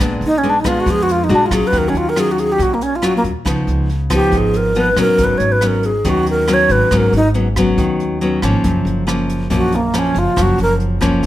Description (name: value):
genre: bossa nova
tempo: 139 BPM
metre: 4/4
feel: straight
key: Eb minor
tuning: A4 = 440 Hz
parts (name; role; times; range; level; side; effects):
- nylon-string guitar; accompaniment; 0.0-11.3 s; Gb2 to Gb4; -17 LUFS; left 1 dB; none
- upright bass; bass; 0.0-11.3 s; Gb1 to F2; -20 LUFS; equal; none
- jazz brush drum kit; drums; 0.0-11.3 s; hi-hat, kick drum, rim click; -24 LUFS; equal; none
- breathy bright wooden-headed alto flute; melody; 0.3-10.7 s; Bb3 to Db5; -16 LUFS; right 1 dB; none
room: light reverb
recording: none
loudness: -13 LUFS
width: side -14 dB against mid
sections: 0.0-11.3 A section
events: alto flute solo 0.0-11.3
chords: 0.0 Bb7b9; 1.3 Bb7b13; 1.7 Ebm9; 3.5 Abm11; 8.6 Ebm9/Gb (rootless)